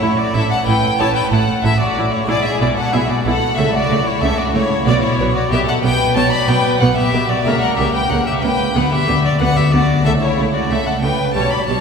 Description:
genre	classical, baroque-style concerto movement with solo episodes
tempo	93 BPM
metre	4/4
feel	straight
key	unclear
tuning	A4 = 440 Hz
part	rich chamber violin section	melody	0.0-11.8 s	C#5 to B5	-22 LUFS	left 3 dB	none
part	warm violin	melody	0.0-11.8 s	C#5 to B5	-22 LUFS	equal	none
part	rich chamber violin section	second line	0.0-11.8 s	E4 to D5	-21 LUFS	left 2 dB	none
part	harpsichord	accompaniment	0.0-11.8 s	A2 to A4	-23 LUFS	left 1 dB	none
part	warm chamber viola section	accompaniment	0.0-11.8 s	G3 to E4	-23 LUFS	right 2 dB	none
part	dark chamber cello section	bass	0.0-11.8 s	A2 to D3	-22 LUFS	right 2 dB	none
part	rich chamber double bass section	bass	0.0-11.8 s	A1 to D2	-22 LUFS	right 2 dB	none
room	wet concert hall reverb, RT60 2.0 s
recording	recorded in a church or concert hall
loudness	-14 LUFS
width	side -6 dB against mid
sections	0.0-11.8 A section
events	none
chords	0.0 A5; 2.3 E/B; 3.6 A/C#; 4.9 B5; 7.5 F#/C#; 8.8 Bm/D; 10.1 A/C#

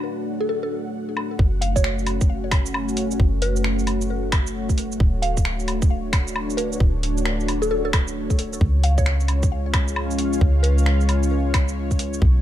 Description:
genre	future garage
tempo	133 BPM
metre	4/4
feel	swing 64% on 16ths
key	F# harmonic minor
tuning	A4 = 440 Hz
part	dark analog pad	sustained chords	0.0-12.4 s	G#3 to F#5	-26 LUFS	left 1 dB	chorus, sidechain pumping
part	mallet-like synth pluck	melody	0.4-11.3 s	A4 to E#5	-29 LUFS	left 1 dB	chorus, phaser, ping-pong delay
part	garage drum kit	drums	1.2-12.2 s	finger snaps, hi-hat, shaker, woodblock	-27 LUFS	equal	none
part	soft 808-style bass	bass	1.4-12.4 s	D1 to C#2	-22 LUFS	equal	sidechain pumping
part	electronic kick drum	drums	1.4-12.3 s	none	-19 LUFS	equal	none
room	light reverb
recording	dark, warm production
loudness	-19 LUFS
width	side -12 dB against mid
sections	0.0-1.4 A section; 1.4-12.4 B section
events	filter sweep on analog synth pad 0.0-1.4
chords	0.0 Dmaj7; 1.4 F#m; 5.0 Dmaj7; 8.6 C#

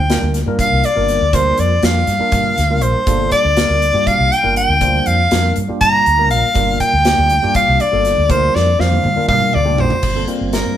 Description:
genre	electric jazz fusion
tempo	241 BPM (eighths)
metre	7/8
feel	straight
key	G minor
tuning	A4 = 441 Hz
part	clear soprano saxophone	melody	0.0-10.8 s	Bb4 to Bb5	-15 LUFS	left 1 dB	none
part	fretless electric bass	bass	0.0-10.8 s	G1 to G2	-18 LUFS	equal	none
part	tine electric piano	accompaniment	0.1-10.8 s	G3 to C5	-22 LUFS	right 1 dB	slow stereo tremolo
part	modern studio drum kit	drums	0.1-10.7 s	crash cymbal, hi-hat, kick drum, snare drum, toms	-21 LUFS	equal	none
room	moderate studio reverb, RT60 0.9 s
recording	band playing live in one room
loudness	-12 LUFS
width	side -10 dB against mid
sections	0.0-10.0 A section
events	drum fill 8.5-10.0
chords	0.0 Gm7; 10.0 Gm11

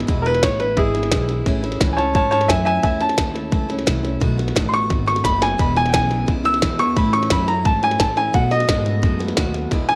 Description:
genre	rockabilly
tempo	174 BPM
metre	4/4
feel	straight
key	E major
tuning	A4 = 436 Hz
part	picked steel-string acoustic guitar	accompaniment	0.0-10.0 s	E2 to F#4	-29 LUFS	equal	none
part	electric guitar through a small old amp	riff	0.0-0.1, 5.6-10.0 s	E2 to G#3	-29 LUFS	equal	none
part	upright bass	bass	0.0-10.0 s	E1 to B2	-26 LUFS	equal	none
part	minimal click drum kit	drums	0.0-9.9 s	hi-hat, kick drum, snare drum	-24 LUFS	equal	none
part	bright upright piano	melody	0.2-10.0 s	E4 to E6	-22 LUFS	equal	none
room	light reverb, small room ambience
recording	none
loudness	-19 LUFS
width	mono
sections	0.1-10.0 A section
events	upright piano solo 0.1-10.0; drum fill 5.2-5.6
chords	0.1 E; 1.5 A; 4.2 B7; 5.6 E; 7.0 A; 8.3 B7

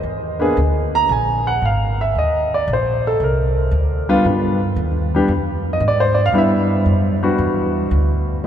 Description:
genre	jazz piano trio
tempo	114 BPM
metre	4/4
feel	swing 69% on 8ths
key	unclear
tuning	A4 = 440 Hz
part	upright bass	bass	0.0-8.5 s	G#1 to Ab2	-20 LUFS	equal	none
part	warm concert grand piano	melody	0.4-8.5 s	G3 to A#5	-17 LUFS	equal	none
room	wet cathedral reverb, RT60 6.0 s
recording	recorded in a church or concert hall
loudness	-15 LUFS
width	side -9 dB against mid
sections	0.0-8.5 A section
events	grand piano solo 0.0-8.5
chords	0.1 E7#11; 2.2 Ebmaj7(no3); 4.3 G7; 6.4 Em9

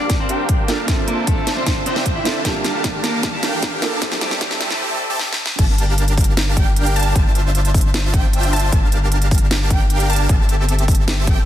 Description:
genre	future bass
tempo	153 BPM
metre	4/4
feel	half-time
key	G dorian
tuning	A4 = 440 Hz
part	electric guitar at the edge of break-up	melody	0.0-4.8 s	E3 to E5	-25 LUFS	equal	sidechain pumping, ping-pong delay
part	felt-muted upright piano	accompaniment	0.0-5.6 s	A3 to A5	-29 LUFS	right 4 dB	sidechain pumping, ping-pong delay
part	supersaw chords	riff	0.0-11.5 s	C4 to A5	-23 LUFS	right 1 dB	sidechain pumping, low-pass filter, ping-pong delay
part	riser	sound effects	0.0-4.8 s	none	-35 LUFS	right 1 dB	none
part	electronic kick drum	drums	0.1-11.4 s	none	-18 LUFS	equal	studio reverb
part	trap drum kit	drums	0.1-11.4 s	crash cymbal, hi-hat, snare drum	-23 LUFS	equal	studio reverb
part	wide unison pluck	arpeggios	5.6-11.5 s	G5 to A5	-28 LUFS	equal	auto-pan, sidechain pumping, ping-pong delay
part	saturated sub bass	bass	5.6-11.5 s	G1	-18 LUFS	equal	sidechain pumping
room	light reverb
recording	dense, heavily limited modern master, high-pass filter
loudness	-15 LUFS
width	side -12 dB against mid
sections	0.0-5.6 A section; 5.6-11.5 B section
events	build-up 0.0-5.6; drum fill 0.0-4.8, 5.2-5.6; riser 0.0-4.8; filter sweep on supersaw synth 0.0-5.6; filter sweep 0.0-5.6; drop 5.6-11.5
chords	0.0 Gm9; 0.9 Dm9; 2.5 Gm9; 4.0 Am7; 5.6 Gm9; 7.2 Dm9/G; 8.7 Gm9; 10.3 Am7/G

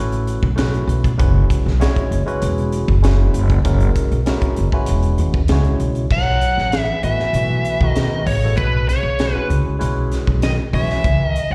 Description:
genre	electric jazz fusion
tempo	97 BPM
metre	4/4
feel	straight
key	unclear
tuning	A4 = 440 Hz
part	barky tine electric piano	accompaniment	0.0-11.1 s	G#3 to C#5	-27 LUFS	equal	overdrive, phaser, slapback echo
part	upright bass	bass	0.0-11.5 s	E1 to B2	-20 LUFS	equal	none
part	crisp fusion drum kit	drums	0.1-11.5 s	crash cymbal, hi-hat, kick drum, snare drum	-24 LUFS	equal	none
part	bluesy overdriven lead guitar	melody	6.1-11.5 s	B4 to F#5	-23 LUFS	equal	distortion, slapback echo
part	breathy bass clarinet	second line	6.1-11.5 s	B2 to F#3	-29 LUFS	equal	slapback echo
room	little or no reverb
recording	live gig heard through the venue's PA, recital hall reverb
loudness	-18 LUFS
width	mono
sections	0.0-6.1 A section; 6.1-11.5 B section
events	none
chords	0.0 B9sus4; 1.2 F#9sus4; 6.1 B7sus4; 8.6 E69/B

